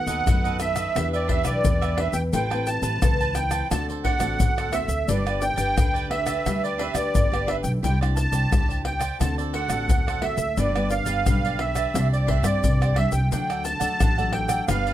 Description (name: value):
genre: samba and choro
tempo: 87 BPM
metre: 4/4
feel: straight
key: unclear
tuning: A4 = 440 Hz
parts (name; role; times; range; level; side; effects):
- musette accordion; melody; 0.0-14.9 s; D5 to A5; -26 LUFS; right 2 dB; none
- nylon-string guitar; accompaniment; 0.0-14.9 s; G2 to B4; -30 LUFS; left 3 dB; none
- cavaquinho; accompaniment; 0.1-14.9 s; D4 to A5; -33 LUFS; right 6 dB; none
- upright bass; bass; 0.1-14.9 s; G1 to G2; -26 LUFS; equal; none
- tube shaker, pandeiro, surdo and tamborim; percussion; 0.1-14.9 s; none; -25 LUFS; left 2 dB; none
room: little or no reverb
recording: close, detailed microphones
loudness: -21 LUFS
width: side -12 dB against mid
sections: 0.0-14.9 A section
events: none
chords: 0.0 B7/D#; 1.0 Em7; 2.3 Amadd9; 3.7 D7; 5.1 G; 7.8 Cadd9; 9.2 D7; 10.6 G; 12.0 Csus2; 13.3 D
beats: 0.27 0.96 1.65 | 2.34 3.03 3.71 4.40 | 5.09 5.78 6.46 7.15 | 7.84 8.53 9.21 9.90 | 10.58 11.27 11.95 12.63 | 13.32 14.00 14.68